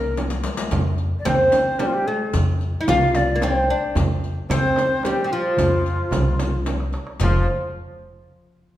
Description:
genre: Arabic maqam ensemble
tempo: 111 BPM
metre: 3/4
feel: straight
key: F maqam rast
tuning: A4 = 441 Hz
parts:
  - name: oud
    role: melody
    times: 0.0-7.5 s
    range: E3-50c to F4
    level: -22 LUFS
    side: equal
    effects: none
  - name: breathy bright ney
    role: second line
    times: 0.0-7.5 s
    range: F4 to F5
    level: -25 LUFS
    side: left 3 dB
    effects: none
  - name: upright bass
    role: bass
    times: 0.0-7.5 s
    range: F1 to F2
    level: -23 LUFS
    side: equal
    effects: none
  - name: darbuka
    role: percussion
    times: 0.2-7.5 s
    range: none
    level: -28 LUFS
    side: right 4 dB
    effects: none
  - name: frame drum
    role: percussion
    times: 0.2-7.5 s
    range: none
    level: -28 LUFS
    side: right 2 dB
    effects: none
  - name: riq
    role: percussion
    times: 0.2-7.5 s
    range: none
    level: -32 LUFS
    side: left 4 dB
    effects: none
room: wet recital hall reverb, RT60 1.5 s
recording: minimal, uncompressed stereo recording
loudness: -18 LUFS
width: side -13 dB against mid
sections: 0.0-7.2 A section; 7.2-8.8 B section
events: drum fill 0.2-0.7, 6.7-7.2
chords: none

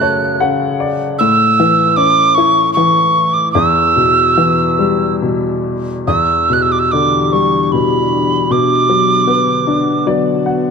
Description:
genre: celtic folk, Celtic slow air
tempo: 76 BPM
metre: 3/4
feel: rubato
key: E dorian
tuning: A4 = 442 Hz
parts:
  - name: wooden whistle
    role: melody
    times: 0.0-10.1 s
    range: B5 to F#6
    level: -13 LUFS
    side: right 3 dB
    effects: none
  - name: clear upright piano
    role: accompaniment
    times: 0.0-10.7 s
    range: E2 to A5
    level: -15 LUFS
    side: left 3 dB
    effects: none
  - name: evolving wavetable pad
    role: sustained chords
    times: 6.7-10.7 s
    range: D3 to G4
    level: -20 LUFS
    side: left 3 dB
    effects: chorus, built-in reverb
room: light reverb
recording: close, detailed microphones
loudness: -11 LUFS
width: side -6 dB against mid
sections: 0.0-6.1 A section; 6.1-10.7 A section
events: upright piano fill 0.0-1.2, 9.7-10.7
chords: 0.0 F#m; 1.2 A; 3.5 Em; 6.1 Em7; 8.5 Bm

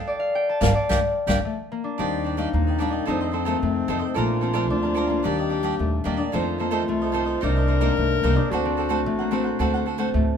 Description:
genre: samba and choro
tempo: 110 BPM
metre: 4/4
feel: straight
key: G minor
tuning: A4 = 437 Hz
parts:
  - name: concert harp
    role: melody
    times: 0.0-10.4 s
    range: A3 to A5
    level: -26 LUFS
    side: left 4 dB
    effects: none
  - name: cavaquinho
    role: accompaniment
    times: 0.6-10.1 s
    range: D4 to Bb5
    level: -29 LUFS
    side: right 7 dB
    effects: none
  - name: nylon-string guitar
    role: accompaniment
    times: 0.6-10.4 s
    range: F2 to F#4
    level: -29 LUFS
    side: left 1 dB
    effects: none
  - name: upright bass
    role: bass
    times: 0.6-10.4 s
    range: G1 to F2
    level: -26 LUFS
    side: right 1 dB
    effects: none
  - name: jazz brush drum kit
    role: drums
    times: 0.6-1.4 s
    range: kick drum, snare drum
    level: -26 LUFS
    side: equal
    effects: none
  - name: warm clarinet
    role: second line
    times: 2.0-10.4 s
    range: C4 to Bb4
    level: -27 LUFS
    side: left 3 dB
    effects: none
room: moderate studio reverb, RT60 0.7 s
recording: minimal, uncompressed stereo recording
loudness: -21 LUFS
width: side -7 dB against mid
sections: 0.0-2.0 A section; 2.0-10.4 B section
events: band accent 0.0-2.0; harp solo 0.0-2.0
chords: 0.0 Gm; 2.0 Ebmaj7; 3.1 F7; 4.2 Bbmaj7; 5.3 Ebmaj7; 6.3 F7; 7.4 Cm7; 8.5 D7

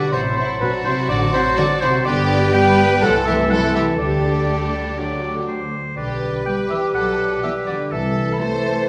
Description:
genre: cinematic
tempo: 124 BPM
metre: 4/4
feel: straight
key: G major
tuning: A4 = 439 Hz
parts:
  - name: celesta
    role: melody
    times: 0.0-8.8 s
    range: B5 to A6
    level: -31 LUFS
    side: equal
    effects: none
  - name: warm studio violin section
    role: melody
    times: 0.0-8.9 s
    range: D4 to C5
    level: -31 LUFS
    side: equal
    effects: none
  - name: bright oboe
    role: second line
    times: 0.0-8.9 s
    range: A4 to D5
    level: -31 LUFS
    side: equal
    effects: none
  - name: mellow hollow flute section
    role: second line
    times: 0.0-8.9 s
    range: A5 to D6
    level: -35 LUFS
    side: equal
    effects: none
  - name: warm clarinet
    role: second line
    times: 0.0-8.9 s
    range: B4 to B5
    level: -26 LUFS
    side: equal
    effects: none
  - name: warm studio violin section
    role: second line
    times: 0.0-8.9 s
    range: D4 to C5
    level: -29 LUFS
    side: equal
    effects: none
  - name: mellow bassoon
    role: accompaniment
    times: 0.0-8.9 s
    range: E3 to G3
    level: -29 LUFS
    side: equal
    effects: none
  - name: mellow French horn section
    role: sustained chords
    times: 0.0-8.9 s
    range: E3 to C5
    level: -28 LUFS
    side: equal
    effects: none
  - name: dark studio cello section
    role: bass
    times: 0.0-8.9 s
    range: B2 to A3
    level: -27 LUFS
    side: equal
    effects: none
  - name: dark studio double bass section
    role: bass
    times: 0.1-8.3 s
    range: G1 to D2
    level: -28 LUFS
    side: equal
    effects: none
  - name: rich studio viola section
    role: accompaniment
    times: 0.6-8.5 s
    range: A3 to G4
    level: -30 LUFS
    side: equal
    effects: none
room: wet recital hall reverb, RT60 1.4 s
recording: none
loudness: -19 LUFS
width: mono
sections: 0.0-8.9 A section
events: none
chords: 0.1 F#dim/A; 2.1 G; 3.0 Am/C; 4.0 Dsus4; 5.0 D; 6.0 G/B; 7.9 Am/C

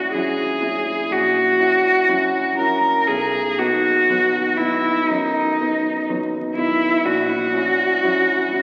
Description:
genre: classical, romantic duo for cello and grand piano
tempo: 61 BPM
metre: 4/4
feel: rubato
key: B major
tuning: A4 = 440 Hz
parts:
  - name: rich cello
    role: melody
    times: 0.0-8.6 s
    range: D#4 to A#4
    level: -20 LUFS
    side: equal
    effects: none
  - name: warm grand piano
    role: accompaniment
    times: 0.0-8.6 s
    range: A#1 to E4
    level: -27 LUFS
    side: equal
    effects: none
room: wet concert hall reverb, RT60 2.1 s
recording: very old 78 rpm record, vinyl crackle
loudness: -19 LUFS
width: mono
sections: 0.0-8.6 A section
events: none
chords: 0.0 F#7/A#; 3.1 B; 7.0 F#7/A#

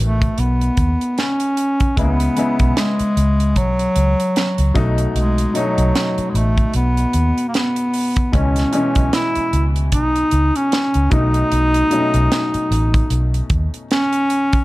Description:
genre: lush 1970s-style soul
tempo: 75 BPM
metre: 4/4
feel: swing 58% on 16ths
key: unclear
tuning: A4 = 440 Hz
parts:
  - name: clear bass clarinet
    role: melody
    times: 0.0-14.6 s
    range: F#3 to E4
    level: -19 LUFS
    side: equal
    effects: none
  - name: warm baby grand piano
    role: accompaniment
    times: 0.0-14.6 s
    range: B2 to F#4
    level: -24 LUFS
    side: left 2 dB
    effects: none
  - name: vintage muted fingered electric bass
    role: bass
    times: 0.0-13.7 s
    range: A1 to D#2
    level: -17 LUFS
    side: equal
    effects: none
  - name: tight funk drum kit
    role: drums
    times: 0.2-14.6 s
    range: hi-hat, kick drum, snare drum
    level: -20 LUFS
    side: equal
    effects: none
room: light reverb, small room ambience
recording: dark, warm production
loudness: -15 LUFS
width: side -19 dB against mid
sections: 0.0-14.6 A section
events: none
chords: 0.0 B7; 2.0 C#m7; 4.8 B7; 8.3 C#m7; 11.1 B7

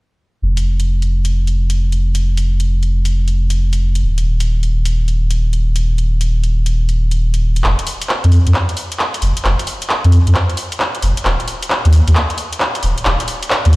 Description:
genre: UK garage, two-step garage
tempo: 133 BPM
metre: 4/4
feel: swing 66% on 16ths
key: unclear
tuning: A4 = 440 Hz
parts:
  - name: soft dub sub bass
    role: bass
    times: 0.4-13.8 s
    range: Eb1 to F2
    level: -13 LUFS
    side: equal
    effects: none
  - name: house drum kit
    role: drums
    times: 0.6-13.8 s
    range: handclaps, hi-hat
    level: -20 LUFS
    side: equal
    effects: none
room: little or no reverb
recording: played on a big sound system in a bare room, stone room reverb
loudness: -13 LUFS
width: side -22 dB against mid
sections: 0.4-7.6 A section; 7.6-13.8 B section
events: build-up 7.6-13.8; drum fill 7.6-13.8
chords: none

